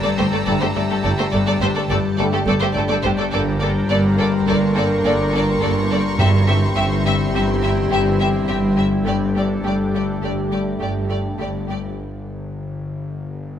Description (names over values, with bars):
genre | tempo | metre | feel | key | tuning
cinematic | 104 BPM | 5/4 | straight | unclear | A4 = 438 Hz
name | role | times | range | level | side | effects
rich studio violin section | melody | 0.0-11.8 s | A4 to E5 | -26 LUFS | left 1 dB | none
warm studio violin section | second line | 0.0-11.8 s | G4 to A4 | -27 LUFS | equal | none
rich studio viola section | accompaniment | 0.0-11.8 s | A3 to C4 | -29 LUFS | right 3 dB | none
bubbling stepped-filter texture | sustained chords | 0.0-12.0 s | C4 to G5 | -30 LUFS | right 2 dB | chorus, built-in reverb
concert harp | riff | 0.0-13.6 s | G2 to G3 | -25 LUFS | left 6 dB | none
warm studio cello section | bass | 0.0-11.9 s | G2 | -24 LUFS | right 1 dB | none
bowed-like drone | drone | 0.0-13.6 s | G1 | -29 LUFS | left 1 dB | built-in reverb
rich studio violin section | texture | 0.0-8.7 s | A5 to E6 | -30 LUFS | left 1 dB | none
rich studio double bass section | bass | 0.2-11.9 s | G1 | -24 LUFS | right 2 dB | none
dark French horn section | sustained chords | 0.5-11.9 s | A3 to Bb4 | -27 LUFS | left 2 dB | none
dark trombone section | sustained chords | 0.5-12.0 s | D3 to G3 | -31 LUFS | right 4 dB | none
Celtic harp | texture | 0.8-11.8 s | D4 to G5 | -33 LUFS | left 5 dB | none
timpani | percussion | 6.2-7.0 s | G2 | -21 LUFS | right 1 dB | none
room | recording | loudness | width
moderate scoring stage reverb, RT60 1.6 s | none | -16 LUFS | side -9 dB against mid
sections
0.0-13.6 A section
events
break 12.0-13.6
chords
0.0 Dsus4/G; 3.3 Gmadd9; 6.2 C/G; 9.1 Dsus4/G